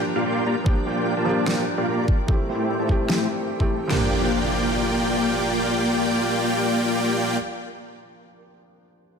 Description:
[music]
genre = future bass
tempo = 148 BPM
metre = 4/4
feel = half-time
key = G dorian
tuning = A4 = 440 Hz
[part]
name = felt-muted upright piano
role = accompaniment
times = 0.0-9.2 s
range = E3 to G4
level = -28 LUFS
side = right 2 dB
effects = sidechain pumping, ping-pong delay
[part]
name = shimmering ambient pad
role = sustained chords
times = 0.0-7.4 s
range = F4 to G5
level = -32 LUFS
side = equal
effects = chorus, built-in reverb, sidechain pumping
[part]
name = dense compressed supersaw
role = riff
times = 0.0-7.4 s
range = A3 to C6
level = -22 LUFS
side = left 1 dB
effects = sidechain pumping, low-pass filter, ping-pong delay
[part]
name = dubstep drum kit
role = drums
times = 0.7-4.0 s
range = crash cymbal, kick drum, snare drum, toms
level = -22 LUFS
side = equal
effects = overdrive
[part]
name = electronic snare drum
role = drums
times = 1.5-3.2 s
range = none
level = -28 LUFS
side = left 1 dB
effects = overdrive
[part]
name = impact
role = sound effects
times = 3.9-7.4 s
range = none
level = -31 LUFS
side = equal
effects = none
[sound]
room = moderate lush hall reverb, RT60 2.1 s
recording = none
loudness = -20 LUFS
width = side -6 dB against mid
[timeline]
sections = 0.0-3.9 A section; 3.9-7.1 B section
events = filter sweep on supersaw synth 0.0-3.9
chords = 0.0 Bb6; 0.7 Gm7; 2.3 Am7; 3.9 Gm7

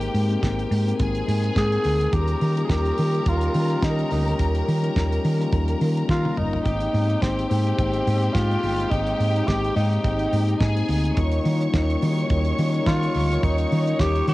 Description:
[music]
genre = disco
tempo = 106 BPM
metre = 4/4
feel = swing 56% on 16ths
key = Ab major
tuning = A4 = 441 Hz
[part]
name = clear studio string section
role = second line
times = 0.0-14.3 s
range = G4 to Db6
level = -30 LUFS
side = left 1 dB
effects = cassette tape
[part]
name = mellow tine electric piano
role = accompaniment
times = 0.0-14.3 s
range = F3 to Bb4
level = -29 LUFS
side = left 6 dB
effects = medium stereo tremolo, cassette tape
[part]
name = warm French horn section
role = sustained chords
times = 0.0-14.3 s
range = Eb3 to Bb4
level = -30 LUFS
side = equal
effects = cassette tape
[part]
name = hollow-body short-scale fingered electric bass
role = bass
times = 0.0-14.3 s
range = G1 to Eb3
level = -23 LUFS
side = equal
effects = none
[part]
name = damped 70s drum kit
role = drums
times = 0.0-14.3 s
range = hi-hat, kick drum, snare drum, toms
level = -27 LUFS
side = equal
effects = cassette tape
[part]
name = growling tenor saxophone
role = melody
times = 1.6-14.3 s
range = C4 to Ab4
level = -26 LUFS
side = equal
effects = cassette tape, tape echo
[sound]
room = studio reverb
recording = home recording on cassette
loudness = -20 LUFS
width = side -18 dB against mid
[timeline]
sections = 0.0-6.7 A section; 6.7-14.3 B section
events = drum fill 6.1-6.7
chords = 0.0 Abmaj7; 2.1 Eb7; 6.7 Abmaj7; 11.2 Eb7

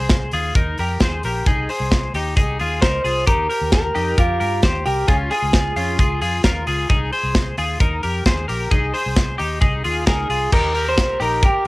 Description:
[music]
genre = jangly indie pop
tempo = 132 BPM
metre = 4/4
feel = straight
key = Ab major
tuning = A4 = 440 Hz
[part]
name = twelve-string electric guitar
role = arpeggios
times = 0.0-11.7 s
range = Db4 to C5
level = -22 LUFS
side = left 1 dB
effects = cassette tape, tape echo
[part]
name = vintage muted fingered electric bass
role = bass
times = 0.0-11.5 s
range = Bb1 to G2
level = -25 LUFS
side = equal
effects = none
[part]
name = modern studio drum kit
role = drums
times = 0.1-11.5 s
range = crash cymbal, hi-hat, kick drum, snare drum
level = -19 LUFS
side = equal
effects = cassette tape
[part]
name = electric guitar through a small old amp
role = melody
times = 2.8-6.2, 10.1-11.7 s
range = F4 to C5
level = -21 LUFS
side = equal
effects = cassette tape
[sound]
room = light reverb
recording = home recording on cassette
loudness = -16 LUFS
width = side -21 dB against mid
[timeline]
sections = 0.0-10.5 A section; 10.5-11.7 B section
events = none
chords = 0.0 Ab; 3.3 Ebadd9; 5.1 Db; 6.9 Ab; 10.5 Eb

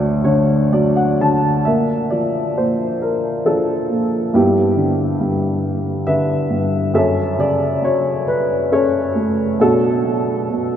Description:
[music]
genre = classical, lyrical solo piano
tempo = 68 BPM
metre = 3/4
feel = rubato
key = unclear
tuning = A4 = 436 Hz
[part]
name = dark upright piano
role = solo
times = 0.0-10.8 s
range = D2 to A5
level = -15 LUFS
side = equal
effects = none
[sound]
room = wet cathedral reverb, RT60 6.4 s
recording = in a vast, echoing space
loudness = -15 LUFS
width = side -9 dB against mid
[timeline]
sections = 0.0-1.7 A section; 1.7-10.8 B section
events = upright piano fill 0.0-1.7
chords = 0.0 D; 1.7 Bb; 4.3 G6; 6.9 F#madd11; 9.6 Bm7

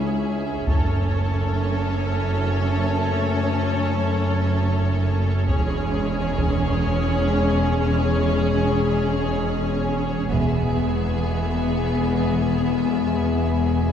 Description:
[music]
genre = cinematic, epic orchestral film score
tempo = free time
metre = none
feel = none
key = C# minor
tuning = A4 = 440 Hz
[part]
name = rich symphonic violin section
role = melody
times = 0.0-13.9 s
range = C#5 to E5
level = -35 LUFS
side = left 1 dB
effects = none
[part]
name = warm symphonic violin section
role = second line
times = 0.0-13.9 s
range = G#4 to A4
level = -30 LUFS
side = equal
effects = none
[part]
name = clear symphonic viola section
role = accompaniment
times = 0.0-13.9 s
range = B3 to C#4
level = -29 LUFS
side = right 1 dB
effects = none
[part]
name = mellow French horn section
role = sustained chords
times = 0.0-13.9 s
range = G#3 to E4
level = -26 LUFS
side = left 3 dB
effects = none
[part]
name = rich symphonic cello section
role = bass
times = 0.0-13.9 s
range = C#2 to F#2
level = -25 LUFS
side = equal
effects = none
[part]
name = rich symphonic double bass section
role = bass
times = 0.0-13.9 s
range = E1 to C#2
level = -26 LUFS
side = right 1 dB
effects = none
[part]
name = taiko ensemble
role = drums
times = 0.7-1.8, 5.5-6.7, 10.3-11.5 s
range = none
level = -26 LUFS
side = equal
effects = none
[sound]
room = wet scoring stage reverb, RT60 2.0 s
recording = heard from further back in the room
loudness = -19 LUFS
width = side -8 dB against mid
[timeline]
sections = 0.0-13.9 A section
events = build-up 0.0-13.9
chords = 0.0 C#m; 0.7 F#m; 5.5 C#m/E; 10.3 E

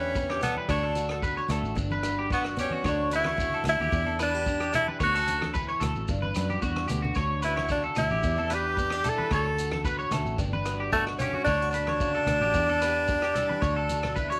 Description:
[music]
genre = highlife guitar band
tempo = 111 BPM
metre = 4/4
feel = straight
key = D major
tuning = A4 = 439 Hz
[part]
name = edgy tenor saxophone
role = melody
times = 0.0-14.4 s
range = A3 to A4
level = -29 LUFS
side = equal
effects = none
[part]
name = picked old ladder-braced acoustic guitar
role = accompaniment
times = 0.0-14.4 s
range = E2 to G4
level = -39 LUFS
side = equal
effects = none
[part]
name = electric guitar at the edge of break-up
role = arpeggios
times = 0.0-14.4 s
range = F#4 to C#5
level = -34 LUFS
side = equal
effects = lush chorus, slapback echo
[part]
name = fingered electric bass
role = bass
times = 0.0-14.3 s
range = G1 to F#2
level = -35 LUFS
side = equal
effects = none
[part]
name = vintage drum kit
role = drums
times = 0.2-14.3 s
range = hi-hat, kick drum, rim click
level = -38 LUFS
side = equal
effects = none
[part]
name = shekere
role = percussion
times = 0.2-14.4 s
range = none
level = -44 LUFS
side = equal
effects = none
[part]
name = congas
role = percussion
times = 0.4-14.2 s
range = none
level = -40 LUFS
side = equal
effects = none
[sound]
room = light reverb, small room ambience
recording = lossy compression artefacts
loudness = -27 LUFS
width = mono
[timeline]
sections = 0.0-14.4 A section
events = drum fill 6.5-7.2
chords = 0.0 Em7; 0.7 Dmaj7; 1.8 Gmaj7; 2.8 Dmaj7; 3.9 Em7; 5.0 Dmaj7; 6.1 Gmaj7; 7.2 Dmaj7; 8.2 Em7; 9.3 Dmaj7; 10.4 Gmaj7; 11.5 Dmaj7; 12.6 Em7; 13.6 Dmaj7

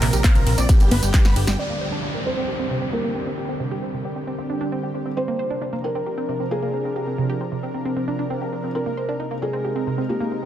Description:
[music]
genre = uplifting trance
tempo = 134 BPM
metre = 4/4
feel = straight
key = C minor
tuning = A4 = 440 Hz
[part]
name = big supersaw lead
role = melody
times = 0.0-1.6 s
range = G4 to F5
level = -30 LUFS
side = equal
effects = sidechain pumping, ping-pong delay
[part]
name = analog pluck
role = arpeggios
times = 0.0-10.5 s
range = C3 to C5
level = -27 LUFS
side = right 3 dB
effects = chorus, phaser, sidechain pumping, ping-pong delay
[part]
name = plucky analog bass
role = bass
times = 0.0-1.6 s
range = G1 to Bb1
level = -21 LUFS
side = equal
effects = sidechain pumping
[part]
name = big-room dance drum kit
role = drums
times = 0.0-1.6 s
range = congas, handclaps, hi-hat, ride cymbal, snare drum, tambourine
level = -26 LUFS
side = equal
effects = low-pass filter on hats, studio reverb, low-pass filter on cymbals, low-pass filter on perc, low-pass filter on snare
[part]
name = electronic kick drum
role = drums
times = 0.2-1.2 s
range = none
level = -15 LUFS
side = equal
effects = studio reverb
[part]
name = felt-muted upright piano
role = second line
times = 1.6-10.5 s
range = G4 to D5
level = -29 LUFS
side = equal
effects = digital delay
[part]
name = downlifter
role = sound effects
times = 1.6-5.2 s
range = none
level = -33 LUFS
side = equal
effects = none
[sound]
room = light reverb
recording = none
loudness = -20 LUFS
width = side -11 dB against mid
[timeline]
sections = 0.0-1.6 A section; 1.6-10.5 B section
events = drop 0.0-1.6; drum fill 1.1-1.6; band accent 1.5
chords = 0.0 Bbadd9; 0.7 G; 1.6 Csus2; 5.2 Bbadd9; 8.8 Abadd9

